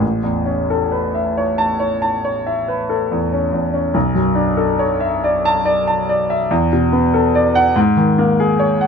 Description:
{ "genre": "classical, impressionist solo piano", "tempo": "47 BPM (dotted quarters)", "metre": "9/8", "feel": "rubato", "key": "A major", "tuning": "A4 = 445 Hz", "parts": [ { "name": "clear concert grand piano", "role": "solo", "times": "0.0-8.9 s", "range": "A1 to A5", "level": "-14 LUFS", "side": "equal", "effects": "none" } ], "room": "little or no reverb", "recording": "close, detailed microphones", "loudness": "-14 LUFS", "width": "side -6 dB against mid", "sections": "0.0-8.9 A section", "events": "none", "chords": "0.0 Aadd9; 4.0 Bm11; 6.5 E9sus4; 7.8 Absus4", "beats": "| 0.02 1.39 2.70 | 3.95 5.22 6.50 | 7.76" }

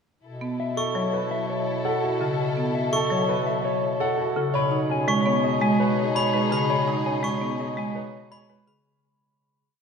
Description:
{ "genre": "classical, minimalist pattern music", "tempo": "167 BPM", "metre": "6/4", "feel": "straight", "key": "B mixolydian", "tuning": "A4 = 442 Hz", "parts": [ { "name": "rich symphonic violin section", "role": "sustained chords", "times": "0.2-8.6 s", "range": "D#4 to A4", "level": "-33 LUFS", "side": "left 4 dB", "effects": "none" }, { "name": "warm bass clarinet", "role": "bass", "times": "0.2-8.7 s", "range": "B2", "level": "-30 LUFS", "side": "left 1 dB", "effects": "none" }, { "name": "marimba with hard mallets", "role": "accompaniment", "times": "0.4-8.9 s", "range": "C#3 to D#4", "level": "-27 LUFS", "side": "right 2 dB", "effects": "none" }, { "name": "mellow electric guitar", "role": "melody", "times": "0.6-8.9 s", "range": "G#4 to B5", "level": "-28 LUFS", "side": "left 5 dB", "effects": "none" }, { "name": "clear baby grand piano", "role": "arpeggios", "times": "0.8-8.7 s", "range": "C#4 to D#5", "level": "-30 LUFS", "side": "right 4 dB", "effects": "none" }, { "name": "glockenspiel with brass mallets", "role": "arpeggios", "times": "0.8-8.9 s", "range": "B5 to C#6", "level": "-31 LUFS", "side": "equal", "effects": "none" } ], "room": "wet church reverb, RT60 3.5 s", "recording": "none", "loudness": "-22 LUFS", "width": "side -6 dB against mid", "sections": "0.2-8.9 A section", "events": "fade-out 6.7-8.9", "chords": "0.2 B9sus4; 4.5 G#m/B", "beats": "| 0.23 0.59 0.95 1.31 1.67 2.03 | 2.39 2.75 3.11 3.47 3.83 4.18 | 4.54 4.90 5.26 5.62 5.98 6.34 | 6.70 7.06 7.42 7.78 8.14 8.50" }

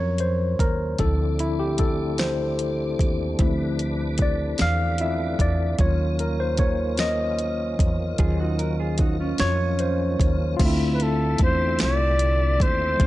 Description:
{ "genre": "slow six-eight R&B", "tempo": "50 BPM (dotted quarters)", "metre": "6/8", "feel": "straight", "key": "unclear", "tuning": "A4 = 440 Hz", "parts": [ { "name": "barky tine electric piano", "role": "accompaniment", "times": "0.0-13.1 s", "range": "F3 to F5", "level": "-26 LUFS", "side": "left 1 dB", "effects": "medium stereo tremolo" }, { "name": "upright bass", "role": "bass", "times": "0.0-13.1 s", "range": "C2 to F2", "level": "-24 LUFS", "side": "equal", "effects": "none" }, { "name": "smooth R&B drum kit", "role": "drums", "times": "0.2-13.1 s", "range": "crash cymbal, hi-hat, kick drum, snare drum", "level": "-23 LUFS", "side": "equal", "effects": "none" }, { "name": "tonewheel organ", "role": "sustained chords", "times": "1.0-13.1 s", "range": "D3 to E5", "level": "-34 LUFS", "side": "right 1 dB", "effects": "overdrive, chorus vibrato, slow rotary speaker" }, { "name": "mellow electric guitar", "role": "second line", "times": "8.2-10.4 s", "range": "Db4 to Bb4", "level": "-31 LUFS", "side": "right 5 dB", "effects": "none" }, { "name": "breathy flugelhorn", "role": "melody", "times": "10.9-13.1 s", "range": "A4 to D5", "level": "-24 LUFS", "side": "left 1 dB", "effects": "none" } ], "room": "little or no reverb", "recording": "nothing above 10.9 kHz", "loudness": "-20 LUFS", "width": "side -16 dB against mid", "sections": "0.0-10.6 A section; 10.6-13.1 B section", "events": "tine electric piano solo 0.0-10.6", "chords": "0.0 Ebm9; 1.0 Dm9; 5.8 Ebm9; 10.6 Dm9", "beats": "| 0.99 2.19 | 3.39 4.59 | 5.79 6.99 | 8.19 9.39 | 10.59 11.79 | 12.99" }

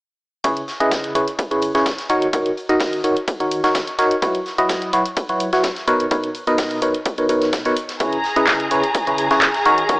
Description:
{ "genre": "piano house", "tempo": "127 BPM", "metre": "4/4", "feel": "straight", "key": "C# dorian", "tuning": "A4 = 440 Hz", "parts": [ { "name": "barking FM electric piano", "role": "riff", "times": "0.4-10.0 s", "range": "B2 to D#5", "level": "-18 LUFS", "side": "equal", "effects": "chorus, phaser, tremolo, sidechain pumping, low-pass filter, tape echo" }, { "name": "electronic kick drum", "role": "drums", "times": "0.4-10.0 s", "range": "none", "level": "-23 LUFS", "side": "equal", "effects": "high-pass filter on kick" }, { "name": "huge arena drum kit", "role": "drums", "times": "0.4-10.0 s", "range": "hi-hat, snare drum", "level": "-32 LUFS", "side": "equal", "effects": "high-pass filter on hats, high-pass filter on snare, high-pass filter on room" }, { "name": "punchy analog drum machine", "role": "drums", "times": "0.4-10.0 s", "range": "handclaps, hi-hat", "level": "-23 LUFS", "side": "equal", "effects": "none" }, { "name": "warm studio violin section", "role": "sustained chords", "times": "8.0-10.0 s", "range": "G#4 to A#5", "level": "-20 LUFS", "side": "equal", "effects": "sidechain pumping" } ], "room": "light reverb, small room ambience", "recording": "dry, gritty hardware recording, AM radio sound", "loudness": "-16 LUFS", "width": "side -23 dB against mid", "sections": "0.4-10.0 A section", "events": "none", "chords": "0.4 C#m7; 2.1 D#m7; 4.2 F#7sus4; 5.9 Bmaj9; 8.0 C#m7", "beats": "| 0.44 0.92 1.39 1.86 | 2.33 2.81 3.28 3.75 | 4.22 4.70 5.17 5.64 | 6.11 6.58 7.06 7.53 | 8.00 8.47 8.95 9.42 | 9.89" }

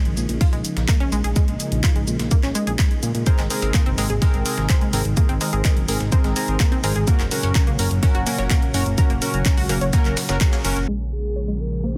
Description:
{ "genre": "progressive house", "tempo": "126 BPM", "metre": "4/4", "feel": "straight", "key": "Bb minor", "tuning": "A4 = 440 Hz", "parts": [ { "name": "lush unison pad", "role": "sustained chords", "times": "0.0-12.0 s", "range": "Bb2 to Gb4", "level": "-31 LUFS", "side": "equal", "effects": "chorus, sidechain pumping" }, { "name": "unison pluck", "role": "arpeggios", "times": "0.0-11.9 s", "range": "Ab3 to Bb5", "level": "-31 LUFS", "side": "equal", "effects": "sidechain pumping, delay" }, { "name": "fat analog bass", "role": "bass", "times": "0.1-12.0 s", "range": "Gb1 to Bb2", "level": "-26 LUFS", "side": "equal", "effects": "sidechain pumping" }, { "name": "deep house drum kit", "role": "drums", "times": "0.1-11.7 s", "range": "crash cymbal, handclaps, hi-hat", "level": "-31 LUFS", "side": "equal", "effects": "studio ambience" }, { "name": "dusty soul sampler-style drum kit", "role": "drums", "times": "0.2-10.8 s", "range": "hi-hat, shaker, snare drum", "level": "-35 LUFS", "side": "equal", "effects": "none" }, { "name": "electronic kick drum", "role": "drums", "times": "0.4-10.5 s", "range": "none", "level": "-20 LUFS", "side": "equal", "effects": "studio ambience" }, { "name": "chorused polysynth", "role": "stabs", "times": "3.3-10.8 s", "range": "C4 to Bb4", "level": "-30 LUFS", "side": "equal", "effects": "sidechain pumping, delay" }, { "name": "downlifter", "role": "sound effects", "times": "11.1-12.0 s", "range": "none", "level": "-52 LUFS", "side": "equal", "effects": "none" }, { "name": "warm velvety synth lead", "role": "melody", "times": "11.1-12.0 s", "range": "Ab4 to C5", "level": "-33 LUFS", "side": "equal", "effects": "chorus, sidechain pumping, digital delay" } ], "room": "digital ambience", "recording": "dense, heavily limited modern master, low-pass filter", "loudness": "-20 LUFS", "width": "mono", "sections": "0.0-10.9 A section; 10.9-12.0 B section", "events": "filter sweep on analog synth pad 0.0-10.9, 10.9-12.0; band accent 10.4; filter sweep 10.9-12.0", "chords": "0.0 Bbm7; 3.3 Abadd9; 7.1 Gb; 10.9 Bbm7", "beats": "0.41 0.89 | 1.36 1.84 2.31 2.79 | 3.27 3.74 4.22 4.69 | 5.17 5.65 6.12 6.60 | 7.08 7.55 8.03 8.50 | 8.98 9.46 9.93 10.41 | 10.88 11.36 11.84" }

